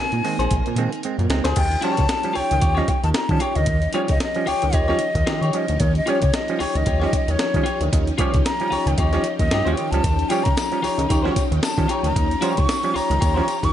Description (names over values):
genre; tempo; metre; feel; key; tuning
funk; 113 BPM; 4/4; swing 56% on 16ths; Eb mixolydian; A4 = 444 Hz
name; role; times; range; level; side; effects
breathy hollow jazz flute; melody; 0.0-13.7 s; Db5 to Db6; -24 LUFS; left 2 dB; none
string machine, full ensemble; sustained chords; 0.0-13.7 s; D#3 to Bb4; -30 LUFS; equal; ensemble chorus
auto-wah clav; stabs; 0.0-13.7 s; Bb2 to Db4; -27 LUFS; right 6 dB; none
fat analog bass; bass; 0.0-13.7 s; Bb1 to Eb3; -22 LUFS; equal; none
breakbeat sampler-style drum kit; drums; 0.1-13.7 s; crash cymbal, hi-hat, kick drum, snare drum; -23 LUFS; equal; none
clean electric guitar; accompaniment; 0.4-13.6 s; Eb4 to Eb5; -26 LUFS; left 3 dB; spring reverb
tambourine; percussion; 10.0-13.6 s; none; -37 LUFS; left 7 dB; none
room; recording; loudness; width
little or no reverb; nothing above 11.0 kHz; -18 LUFS; side -11 dB against mid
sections
0.0-1.6 A section; 1.6-13.7 B section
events
drum fill 0.5-1.6; flute solo 1.6-13.7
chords
0.0 Bb9sus4; 1.6 Eb9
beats
0.51 1.04 | 1.57 2.10 2.63 3.16 | 3.69 4.22 4.75 5.28 | 5.81 6.34 6.87 7.39 | 7.92 8.45 8.98 9.51 | 10.04 10.57 11.10 11.63 | 12.16 12.69 13.21